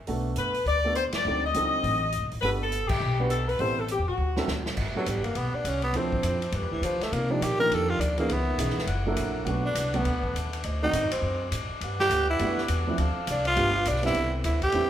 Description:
jazz, big band swing; 204 BPM; 4/4; swing 61% on 8ths; G major; A4 = 440 Hz
dark grand piano; accompaniment; 0.1-14.9 s; Eb3 to B4; -31 LUFS; right 3 dB
upright bass; bass; 0.1-14.9 s; F#1 to D3; -30 LUFS; equal
swinging big-band drum kit; drums; 0.1-14.8 s; crash cymbal, hi-hat, kick drum, ride cymbal, snare drum; -35 LUFS; equal
warm saxophone section; melody; 0.4-4.6 s; F#4 to Eb5; -27 LUFS; left 3 dB
warm saxophone section; sustained chords; 4.8-14.9 s; D3 to F#5; -35 LUFS; left 1 dB
growling tenor saxophone; melody; 5.0-14.9 s; E3 to Bb4; -27 LUFS; equal
wet large studio reverb, RT60 1.4 s; heard from further back in the room; -24 LUFS; side -11 dB against mid
0.0-4.8 A section; 4.8-14.2 B section
band accent 1.1, 2.9; drum fill 4.2-4.8; tenor saxophone solo 4.8-14.9
0.1 Bm7; 1.2 D7b9; 2.4 Gmaj7; 3.6 Am7; 4.2 D7; 4.8 Gmaj7; 6.0 Dm7; 6.5 G7; 7.1 Cm11; 8.3 C#m9; 8.9 F#7alt; 9.5 Bm7; 10.6 D7b9; 11.8 Gmaj7; 13.0 Dm7; 13.6 G7; 14.2 Cmaj9

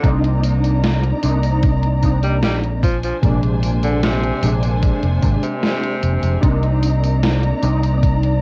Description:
vaporwave; 75 BPM; 4/4; straight; C minor; A4 = 439 Hz
edgy tenor saxophone; melody; 0.0-6.4 s; C3 to G3; -29 LUFS; equal; cassette tape, tape echo
warbly lo-fi synth keys; accompaniment; 0.0-8.4 s; C3 to Eb4; -25 LUFS; equal; ensemble chorus, vintage 12-bit sampler grit, cassette tape, tape echo
warm studio string section; sustained chords; 0.0-8.4 s; D4 to Bb5; -31 LUFS; equal; cassette tape
fingered electric bass; bass; 0.0-8.4 s; F1 to C2; -20 LUFS; equal; tube saturation
electronic kick drum; drums; 0.0-8.2 s; -20 LUFS; equal; cassette tape
gated 80s digital drum machine; drums; 0.0-8.4 s; hi-hat, snare drum, tambourine; -27 LUFS; equal; gated reverb, gated reverb snare, cassette tape
light reverb; home recording on cassette; -17 LUFS; mono
0.0-6.4 A section; 6.4-8.4 A section
kick drops out 5.6-6.4
0.0 Cm9; 2.8 Bb9; 6.4 Cm9

